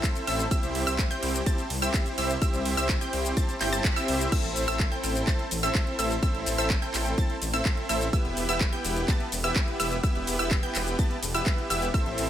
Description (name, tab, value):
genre	EDM, festival progressive house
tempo	126 BPM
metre	4/4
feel	straight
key	A minor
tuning	A4 = 445 Hz
part	wide unison pluck	arpeggios	0.0-12.3 s	E6 to A6	-33 LUFS	right 1 dB	sidechain pumping, digital delay
part	supersaw chords	riff	0.0-12.3 s	B3 to A5	-29 LUFS	equal	cassette tape, sidechain pumping, digital delay
part	electronic kick drum	drums	0.0-12.0 s	none	-26 LUFS	equal	studio reverb
part	house drum kit	drums	0.0-12.3 s	crash cymbal, handclaps, hi-hat, ride cymbal, shaker	-32 LUFS	equal	studio reverb
part	wide detuned saw bass	bass	0.3-12.3 s	E1 to C2	-32 LUFS	equal	chorus, sidechain pumping
room	light reverb, digital ambience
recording	none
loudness	-24 LUFS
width	side -11 dB against mid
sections	0.0-4.3 A section; 4.3-12.3 A section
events	drop 0.0-4.3, 4.3-12.3; band accent 3.8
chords	0.0 Am; 0.5 C; 4.3 Am; 8.1 Em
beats	0.04 | 0.51 0.99 1.46 1.94 | 2.42 2.89 3.37 3.85 | 4.32 4.80 5.27 5.75 | 6.23 6.70 7.18 7.66 | 8.13 8.61 9.08 9.56 | 10.04 10.51 10.99 11.46 | 11.94